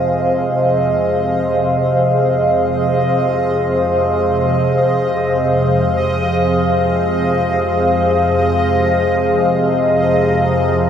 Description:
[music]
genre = dark ambient drone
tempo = free time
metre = none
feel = none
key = F minor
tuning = A4 = 440 Hz
[part]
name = deep dark ambient pad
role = sustained chords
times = 0.0-10.9 s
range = Ab4 to Bb5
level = -15 LUFS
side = left 1 dB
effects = chorus, built-in reverb
[part]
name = organ-like drone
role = drone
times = 0.0-10.9 s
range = F2 to C3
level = -19 LUFS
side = equal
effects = ensemble chorus, built-in reverb
[part]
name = bubbling stepped-filter texture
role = texture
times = 0.0-10.9 s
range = Eb5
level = -21 LUFS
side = right 2 dB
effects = chorus, built-in reverb
[sound]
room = wet cathedral reverb, RT60 6.5 s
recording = dreamy mix soaked in reverb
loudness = -13 LUFS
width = side -8 dB against mid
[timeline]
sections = 0.0-10.9 A section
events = none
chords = 0.0 Fm

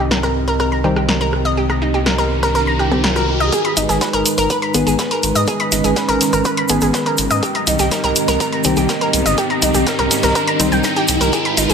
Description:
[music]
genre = melodic techno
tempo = 123 BPM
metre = 4/4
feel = straight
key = unclear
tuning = A4 = 438 Hz
[part]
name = dark analog pad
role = sustained chords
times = 0.0-11.7 s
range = G#3 to Eb5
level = -22 LUFS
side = right 2 dB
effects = wide subtle chorus, sidechain pumping
[part]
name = analog pluck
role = arpeggios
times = 0.0-11.7 s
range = Eb4 to B5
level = -18 LUFS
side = equal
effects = chorus, sidechain pumping, dub echo
[part]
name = gritty driven synth bass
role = bass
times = 0.0-11.7 s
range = G1 to G#2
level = -21 LUFS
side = equal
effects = sidechain pumping
[part]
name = bowed-like drone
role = drone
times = 0.0-11.7 s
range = G#2 to D#3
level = -25 LUFS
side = equal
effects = built-in reverb, sidechain pumping
[part]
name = riser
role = sound effects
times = 1.3-11.7 s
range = none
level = -24 LUFS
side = equal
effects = none
[part]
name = punchy analog drum machine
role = drums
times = 0.1-11.7 s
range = hi-hat, rim click, snare drum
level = -21 LUFS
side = left 1 dB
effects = none
[part]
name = filtered dub chord stab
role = stabs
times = 0.8-11.3 s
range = Eb3 to C4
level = -22 LUFS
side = left 2 dB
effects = chorus, sidechain pumping, dub echo
[part]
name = crunchy breakbeat drum kit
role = drums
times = 3.5-11.7 s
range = hi-hat, shaker, snare drum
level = -31 LUFS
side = equal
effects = none
[part]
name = electronic kick drum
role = drums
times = 3.5-11.4 s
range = none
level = -29 LUFS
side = equal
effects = none
[part]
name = egg shaker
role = percussion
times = 3.5-11.7 s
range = none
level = -24 LUFS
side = right 2 dB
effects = none
[sound]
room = moderate lush hall reverb, RT60 1.9 s, small room ambience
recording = none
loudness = -14 LUFS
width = side -6 dB against mid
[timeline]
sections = 0.0-3.5 A section; 3.5-11.7 B section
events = filter sweep on synth stab 0.0-3.5; riser 1.3-3.5, 3.5-11.7; build-up 3.5-11.7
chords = 0.0 Cm; 3.5 G#m; 7.4 Cm

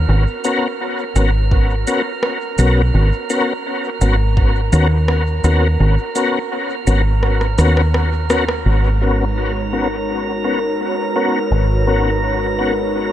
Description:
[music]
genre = ambient dub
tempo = 84 BPM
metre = 4/4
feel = straight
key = G# minor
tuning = A4 = 438 Hz
[part]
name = deep dub fingered electric bass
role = bass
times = 0.0-13.1 s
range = G#1 to D#2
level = -15 LUFS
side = equal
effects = none
[part]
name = drifting glass-harmonics texture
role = texture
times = 0.0-13.1 s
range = A#4 to A#5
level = -27 LUFS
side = right 5 dB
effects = chorus, built-in reverb
[part]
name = tonewheel organ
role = stabs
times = 0.4-12.7 s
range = B3 to A#4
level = -20 LUFS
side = left 2 dB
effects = chorus vibrato, fast rotary speaker, low-pass filter, dub echo
[part]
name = electronic shaker and rim click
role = drums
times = 0.4-8.6 s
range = none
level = -24 LUFS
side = equal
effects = overdrive, studio reverb, dub echo
[part]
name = electronic kick drum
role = drums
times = 1.5-4.5 s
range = none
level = -16 LUFS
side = equal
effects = overdrive, studio reverb
[part]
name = airy breathy pad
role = sustained chords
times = 9.0-13.1 s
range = G#3 to C#5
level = -21 LUFS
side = equal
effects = chorus
[sound]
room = light reverb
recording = none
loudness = -14 LUFS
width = side -12 dB against mid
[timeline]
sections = 0.0-8.7 A section; 8.7-13.1 B section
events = kick drops out 7.2-8.7; drum fill 7.2-8.7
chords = 0.0 G#m11

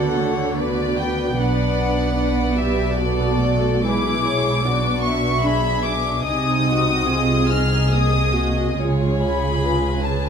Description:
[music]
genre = classical, slow romantic movement for string orchestra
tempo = 73 BPM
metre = 3/4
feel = uneven beats, rubato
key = B minor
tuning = A4 = 439 Hz
[part]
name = warm symphonic violin section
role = melody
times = 0.0-10.3 s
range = C#5 to E#6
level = -24 LUFS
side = left 3 dB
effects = none
[part]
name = warm studio violin section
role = second line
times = 0.0-10.3 s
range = F#4 to F#5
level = -24 LUFS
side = left 3 dB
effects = none
[part]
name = dark symphonic viola section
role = accompaniment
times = 0.0-10.3 s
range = G#3 to G#4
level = -24 LUFS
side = right 1 dB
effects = none
[part]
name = dark chamber cello section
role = bass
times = 0.0-10.3 s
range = B2 to D3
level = -24 LUFS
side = right 3 dB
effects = none
[part]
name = dark symphonic double bass section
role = bass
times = 0.0-10.3 s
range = B1 to D2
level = -24 LUFS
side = right 2 dB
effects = none
[sound]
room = moderate recital hall reverb, RT60 1.6 s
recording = none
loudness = -17 LUFS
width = side -7 dB against mid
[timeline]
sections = 0.0-10.3 A section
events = none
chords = 0.0 Bm/D; 1.4 Bm; 3.9 G#dim/B; 6.3 G#7/B#; 8.8 C#7

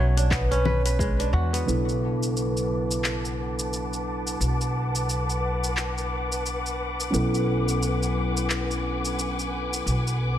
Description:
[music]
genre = organic downtempo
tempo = 88 BPM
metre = 4/4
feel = swing 59% on 16ths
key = B dorian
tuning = A4 = 441 Hz
[part]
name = breathy bansuri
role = melody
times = 0.0-1.3 s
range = B4 to C#5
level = -32 LUFS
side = left 1 dB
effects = ping-pong delay
[part]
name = kora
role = arpeggios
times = 0.0-3.4 s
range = F#3 to B4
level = -30 LUFS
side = right 3 dB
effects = ping-pong delay
[part]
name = upright bass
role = bass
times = 0.0-10.4 s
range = B1 to E2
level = -26 LUFS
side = equal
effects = none
[part]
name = afro-pop drum kit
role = drums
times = 0.2-10.2 s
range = congas, handclaps, hi-hat, shaker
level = -31 LUFS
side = left 1 dB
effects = studio reverb
[part]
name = electronic kick drum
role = drums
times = 0.3-1.2 s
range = none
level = -27 LUFS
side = equal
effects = overdrive, studio reverb
[part]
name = muted felt-like synth keys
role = accompaniment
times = 1.7-10.4 s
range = C#3 to A4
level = -30 LUFS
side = equal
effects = chorus, sidechain pumping, ping-pong delay
[part]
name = warm studio string section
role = sustained chords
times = 1.7-10.4 s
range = B4 to D6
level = -31 LUFS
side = left 2 dB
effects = sidechain pumping, low-pass filter
[part]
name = quartz singing bowl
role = texture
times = 1.7-10.4 s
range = D4 to B4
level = -36 LUFS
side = right 2 dB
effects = none
[sound]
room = light reverb, studio ambience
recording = none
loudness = -23 LUFS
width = side -11 dB against mid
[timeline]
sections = 0.0-1.7 A section; 1.7-10.4 B section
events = filter sweep on string section 1.7-10.4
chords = 0.0 E7; 1.7 Bm7

